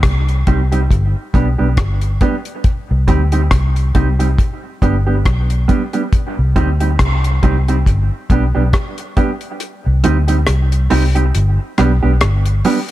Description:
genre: dub reggae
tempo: 69 BPM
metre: 4/4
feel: swing 56% on 16ths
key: C harmonic minor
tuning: A4 = 440 Hz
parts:
  - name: vintage muted fingered electric bass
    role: bass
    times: 0.0-12.6 s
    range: G1 to D2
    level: -14 LUFS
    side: equal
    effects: none
  - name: deep reggae drum kit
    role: drums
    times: 0.0-12.9 s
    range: hi-hat, kick drum, rim click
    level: -16 LUFS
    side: equal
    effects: none
  - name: mellow electric guitar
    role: accompaniment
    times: 0.5-12.8 s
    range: G3 to G4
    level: -19 LUFS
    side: right 4 dB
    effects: dub echo
room: small room ambience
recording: none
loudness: -13 LUFS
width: side -15 dB against mid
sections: 0.0-12.9 A section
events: kick muted 9.6-12.9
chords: 0.0 Cm; 0.9 G; 2.6 Cm; 4.4 G; 6.1 Cm; 7.9 G; 9.6 Cm; 11.3 G

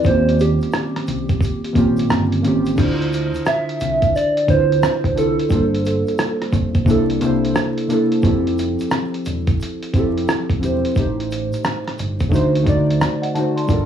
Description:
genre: lo-fi hip hop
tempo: 88 BPM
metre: 4/4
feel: swing 63% on 16ths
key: unclear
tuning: A4 = 441 Hz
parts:
  - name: soft struck synth lead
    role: melody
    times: 0.0-7.2 s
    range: G4 to E5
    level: -20 LUFS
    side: right 2 dB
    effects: chorus, cassette tape, analog delay, plate reverb
  - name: warbly lo-fi synth keys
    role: accompaniment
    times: 0.0-13.9 s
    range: A2 to D5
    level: -19 LUFS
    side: equal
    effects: chorus, cassette tape, plate reverb
  - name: lo-fi sampler-style drum kit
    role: drums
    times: 0.0-13.9 s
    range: crash cymbal, hi-hat, kick drum, rim click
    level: -21 LUFS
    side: right 1 dB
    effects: cassette tape
  - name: tube shaker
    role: percussion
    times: 0.0-13.9 s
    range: none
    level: -49 LUFS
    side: right 8 dB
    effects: none
  - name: deep dub fingered electric bass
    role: bass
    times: 0.1-13.9 s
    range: E1 to Eb2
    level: -22 LUFS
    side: right 2 dB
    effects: none
  - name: celesta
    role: second line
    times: 13.2-13.9 s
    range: Eb5 to C6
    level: -26 LUFS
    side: right 1 dB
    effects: cassette tape, plate reverb
room: light reverb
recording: home recording on cassette, vinyl crackle, studio reverb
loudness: -16 LUFS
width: side -9 dB against mid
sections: 0.0-2.8 A section; 2.8-13.9 B section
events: none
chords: 0.1 Eb13; 2.8 Dm9; 5.5 Gm11; 6.9 C13; 8.2 Fmaj9; 11.0 Am7b5; 12.3 D7b9

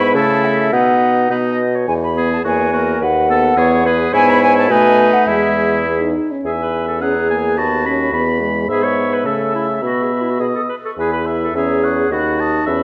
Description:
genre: quick classical-period movement for wind quintet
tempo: 105 BPM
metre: 2/4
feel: straight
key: E major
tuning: A4 = 440 Hz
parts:
  - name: silver concert flute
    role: melody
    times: 0.0-12.8 s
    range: E5 to D#6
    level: -22 LUFS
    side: equal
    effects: none
  - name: warm oboe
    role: second line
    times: 0.0-12.8 s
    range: D#4 to B5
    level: -23 LUFS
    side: equal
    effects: none
  - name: clear clarinet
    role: accompaniment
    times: 0.0-12.8 s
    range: E4 to D#5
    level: -24 LUFS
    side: equal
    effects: none
  - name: warm French horn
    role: accompaniment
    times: 0.0-12.8 s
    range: G#3 to E4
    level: -24 LUFS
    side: equal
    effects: none
  - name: mellow bassoon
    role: bass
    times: 0.0-12.8 s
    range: D#2 to C#3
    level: -21 LUFS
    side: equal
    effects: none
room: moderate scoring stage reverb, RT60 1.6 s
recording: dark, warm production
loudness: -16 LUFS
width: mono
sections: 0.0-6.4 A section; 6.4-12.8 A section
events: none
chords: 0.2 A/C#; 0.7 B5; 1.3 B; 1.9 E; 2.5 F#7/E; 3.0 B7/D#; 3.6 E; 4.1 E/G#; 4.7 B7; 5.3 E; 7.0 F#7/E; 7.6 B7/D#; 8.1 E; 8.7 E/G#; 9.3 A/C#; 9.8 Bsus4; 10.4 B; 11.0 E; 11.6 F#7/E; 12.1 B7/D#

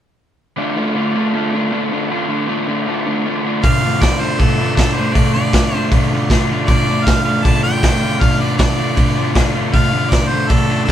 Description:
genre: garage rock duo or trio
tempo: 157 BPM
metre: 4/4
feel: straight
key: D minor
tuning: A4 = 439 Hz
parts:
  - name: crunchy overdriven guitar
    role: riff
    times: 0.6-10.9 s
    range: D3 to F4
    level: -17 LUFS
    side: equal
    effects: none
  - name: bright harmonica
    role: melody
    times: 3.6-10.9 s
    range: A4 to A5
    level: -21 LUFS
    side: equal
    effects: overdrive
  - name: raw garage drum kit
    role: drums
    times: 3.6-10.9 s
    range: hi-hat, kick drum, snare drum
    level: -15 LUFS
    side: equal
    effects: none
room: light reverb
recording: band playing live in one room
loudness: -13 LUFS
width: side -10 dB against mid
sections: 0.6-3.6 A section; 3.6-10.9 B section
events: none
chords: 0.6 Dm

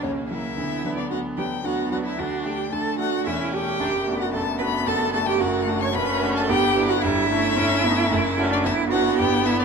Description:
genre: quick classical-period movement for piano quartet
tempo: 112 BPM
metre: 3/4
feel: straight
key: D major from 5.4 s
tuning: A4 = 440 Hz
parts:
  - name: warm violin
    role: melody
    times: 0.0-9.6 s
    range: C#5 to C#6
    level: -27 LUFS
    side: left 11 dB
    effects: none
  - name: rich cello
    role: second line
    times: 0.0-9.6 s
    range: C#4 to C#5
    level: -25 LUFS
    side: right 6 dB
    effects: none
  - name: clear concert grand piano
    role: accompaniment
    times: 0.0-9.6 s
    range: E1 to B4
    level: -25 LUFS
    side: equal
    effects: none
  - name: warm viola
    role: accompaniment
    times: 0.0-9.6 s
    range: G3 to D4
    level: -28 LUFS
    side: right 2 dB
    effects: none
room: light reverb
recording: close, detailed microphones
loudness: -20 LUFS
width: side -5 dB against mid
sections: 0.0-9.6 A section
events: none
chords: 0.0 F#7/C#; 0.6 Bm/D; 2.2 D5; 3.3 A7/E; 3.8 D/F#; 6.5 Em7/G; 7.0 A7/G; 8.1 D/F#; 8.7 Em7/G

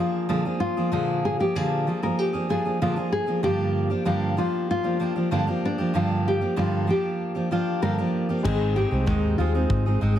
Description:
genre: acoustic pop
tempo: 96 BPM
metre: 4/4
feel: straight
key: unclear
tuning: A4 = 440 Hz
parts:
  - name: nylon-string guitar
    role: melody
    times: 0.0-10.0 s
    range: D4 to Bb4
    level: -27 LUFS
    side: left 2 dB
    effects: none
  - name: fingerpicked steel-string acoustic guitar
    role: accompaniment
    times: 0.0-10.2 s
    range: G2 to Ab4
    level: -24 LUFS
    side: right 1 dB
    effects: none
  - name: clear upright piano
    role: accompaniment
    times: 8.4-10.2 s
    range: Ab3 to C5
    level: -35 LUFS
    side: left 5 dB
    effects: none
  - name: vintage muted fingered electric bass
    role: bass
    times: 8.5-10.2 s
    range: Ab1 to Eb2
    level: -23 LUFS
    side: equal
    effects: none
  - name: natural country drum kit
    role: drums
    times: 8.5-9.8 s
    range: crash cymbal, kick drum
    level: -30 LUFS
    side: equal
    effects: none
room: light reverb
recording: heavily compressed radio sound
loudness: -22 LUFS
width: side -11 dB against mid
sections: 0.0-8.4 A section; 8.4-10.2 B section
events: none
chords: 0.0 Bb7; 3.4 Gm7; 8.4 Ab

